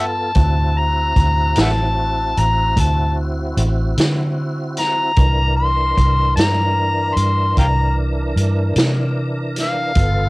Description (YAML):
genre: slow blues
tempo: 50 BPM (dotted quarters)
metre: 12/8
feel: straight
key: unclear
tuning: A4 = 440 Hz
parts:
  - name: overdriven harmonica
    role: melody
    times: 0.0-10.3 s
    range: E5 to C6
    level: -19 LUFS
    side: left 1 dB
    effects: none
  - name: tonewheel organ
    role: sustained chords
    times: 0.0-10.3 s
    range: E3 to Bb4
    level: -26 LUFS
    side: right 1 dB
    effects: slow rotary speaker, overdrive, chorus vibrato
  - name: vintage muted fingered electric bass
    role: bass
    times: 0.0-10.3 s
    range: G1 to D3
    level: -18 LUFS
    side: equal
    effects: none
  - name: vintage drum kit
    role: drums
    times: 0.3-10.1 s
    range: hi-hat, kick drum, snare drum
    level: -20 LUFS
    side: equal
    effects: cassette tape
room: little or no reverb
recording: home recording on cassette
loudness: -15 LUFS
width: side -23 dB against mid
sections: 0.0-10.3 A section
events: none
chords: 0.4 D9; 5.2 C9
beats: | 0.36 1.56 2.76 3.96 | 5.16 6.36 7.56 8.76 | 9.96